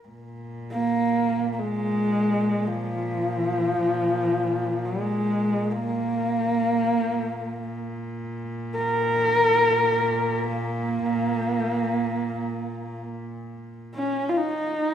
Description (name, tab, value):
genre	mongolian traditional, Mongolian folk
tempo	free time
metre	none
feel	none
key	unclear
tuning	A4 = 440 Hz
part	clear cello	drone	0.1-14.0 s	Bb2	-31 LUFS	equal	none
part	dark horsehead fiddle	melody	0.7-14.9 s	F3 to Bb4	-23 LUFS	equal	none
room	wet recital hall reverb, RT60 1.5 s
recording	small room ambience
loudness	-22 LUFS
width	side -9 dB against mid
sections	0.1-13.9 A section; 13.9-14.9 B section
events	none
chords	none